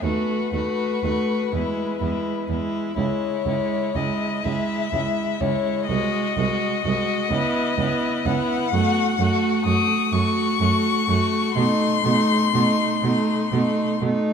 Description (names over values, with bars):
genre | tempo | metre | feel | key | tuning
classical, slow romantic movement for string quartet | 41 BPM (dotted quarters) | 6/8 | rubato | unclear | A4 = 439 Hz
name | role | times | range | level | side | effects
rich violin | melody | 0.0-14.0 s | B4 to D#6 | -25 LUFS | left 8 dB | none
clear violin | second line | 0.0-14.3 s | D#4 to F#4 | -28 LUFS | left 3 dB | none
clear viola | accompaniment | 0.0-14.3 s | G#3 to B3 | -24 LUFS | right 2 dB | none
rich cello | bass | 0.0-14.1 s | B#1 to B2 | -26 LUFS | right 5 dB | none
room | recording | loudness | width
moderate concert hall reverb, RT60 2.3 s | none | -20 LUFS | side -7 dB against mid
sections
0.0-14.3 A section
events
none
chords
0.0 B7/D#; 1.5 E; 3.0 C#m; 5.9 G#7/B#; 7.3 C#m7; 8.7 F#m; 11.6 B7b9